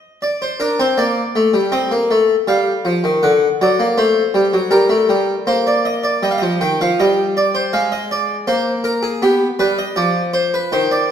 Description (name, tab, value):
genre	classical, baroque-style two-part invention for harpsichord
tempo	80 BPM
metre	4/4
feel	straight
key	unclear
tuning	A4 = 441 Hz
part	harpsichord	solo	0.0-11.1 s	D3 to G5	-14 LUFS	equal	none
room	wet recital hall reverb, RT60 1.4 s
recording	recorded in a church or concert hall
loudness	-14 LUFS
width	side -8 dB against mid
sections	0.0-11.1 A section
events	none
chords	0.2 Gm; 1.7 Cm (rootless); 3.2 D7; 4.7 Gm; 6.2 Cm; 7.7 Fm/Ab; 9.2 G7